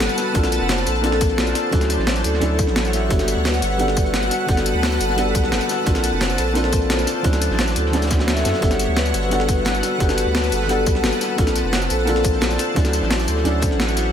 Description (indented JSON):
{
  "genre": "liquid drum and bass",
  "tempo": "174 BPM",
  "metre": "4/4",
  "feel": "straight",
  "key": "unclear",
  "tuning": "A4 = 439 Hz",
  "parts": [
    { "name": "felt-muted upright piano", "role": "accompaniment", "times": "0.0-14.1 s", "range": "F#3 to F#5", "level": "-23 LUFS", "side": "equal", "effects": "diffuse ambient delay" },
    { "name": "shimmering ambient pad", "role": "sustained chords", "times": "0.0-14.1 s", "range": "B4 to A5", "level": "-25 LUFS", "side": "left 1 dB", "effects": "chorus, built-in reverb, sidechain pumping" },
    { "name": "vibraphone with soft mallets", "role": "arpeggios", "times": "0.0-14.1 s", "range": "E4 to E5", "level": "-26 LUFS", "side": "left 1 dB", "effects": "diffuse ambient delay" },
    { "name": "saturated sub bass", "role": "bass", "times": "0.0-14.1 s", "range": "F1 to F#2", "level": "-23 LUFS", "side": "equal", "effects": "none" },
    { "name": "breakbeat sampler-style drum kit", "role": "drums", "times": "0.0-14.0 s", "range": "hi-hat, snare drum, tambourine", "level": "-25 LUFS", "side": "left 1 dB", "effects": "none" },
    { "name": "crunchy breakbeat drum kit", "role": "drums", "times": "0.0-14.1 s", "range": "hi-hat, snare drum", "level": "-31 LUFS", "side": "equal", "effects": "none" },
    { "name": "electronic kick drum", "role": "drums", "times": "0.3-13.7 s", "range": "none", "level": "-20 LUFS", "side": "equal", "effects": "overdrive" }
  ],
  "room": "moderate plate reverb, RT60 1.1 s, small room reverb",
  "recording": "dreamy mix soaked in reverb",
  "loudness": "-17 LUFS",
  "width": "side -8 dB against mid",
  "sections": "0.0-14.1 A section",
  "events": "none",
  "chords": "0.3 Bbmaj9; 1.7 Dmaj9; 3.1 Gmaj9; 5.9 Bbmaj9; 7.2 Dmaj9; 8.6 Gmaj9; 11.4 Bbmaj9; 12.8 Dmaj9"
}